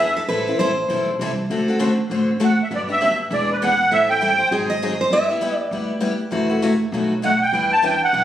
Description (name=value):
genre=acoustic string swing (jazz manouche)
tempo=199 BPM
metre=4/4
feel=swing 58% on 8ths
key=G major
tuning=A4 = 440 Hz
part: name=musette accordion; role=melody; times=0.0-0.1, 2.4-4.5, 7.2-8.2 s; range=B4 to A5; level=-17 LUFS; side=right 1 dB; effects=none
part: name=picked steel-string acoustic guitar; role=second line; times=0.0-1.2, 4.4-5.7 s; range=G#4 to E5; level=-22 LUFS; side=right 1 dB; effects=none
part: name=picked steel-string acoustic guitar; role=accompaniment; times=0.0-8.2 s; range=B2 to B4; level=-22 LUFS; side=left 2 dB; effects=none
part: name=upright bass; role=bass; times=0.0-8.2 s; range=E1 to E2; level=-29 LUFS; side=right 1 dB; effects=none
room=moderate small room reverb, RT60 0.5 s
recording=recorded on a phone in the room, studio reverb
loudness=-17 LUFS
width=side -11 dB against mid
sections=0.0-7.5 A section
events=none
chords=0.3 Am9; 1.5 D7; 2.7 Gmaj7; 3.3 E7; 3.9 Am7; 4.5 Ab7; 5.1 G6; 6.3 F#m7b5; 6.9 B7; 7.5 Em7